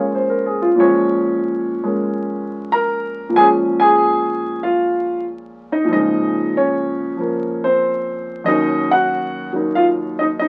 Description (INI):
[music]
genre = solo jazz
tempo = 94 BPM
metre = 4/4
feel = swing 69% on 8ths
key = Bb minor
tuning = A4 = 440 Hz
[part]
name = warm baby grand piano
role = solo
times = 0.0-10.5 s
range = Eb2 to Bb5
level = -18 LUFS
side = equal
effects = none
[sound]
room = moderate studio reverb, RT60 0.7 s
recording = very old 78 rpm record, vinyl crackle, faint mains hum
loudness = -18 LUFS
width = mono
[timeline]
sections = 0.0-10.5 A section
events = none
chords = 0.0 Bbm7; 8.5 Ebm7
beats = 0.14 | 0.78 1.42 2.06 2.70 | 3.34 3.98 4.62 5.26 | 5.90 6.54 7.18 7.82 | 8.46 9.11 9.75 10.39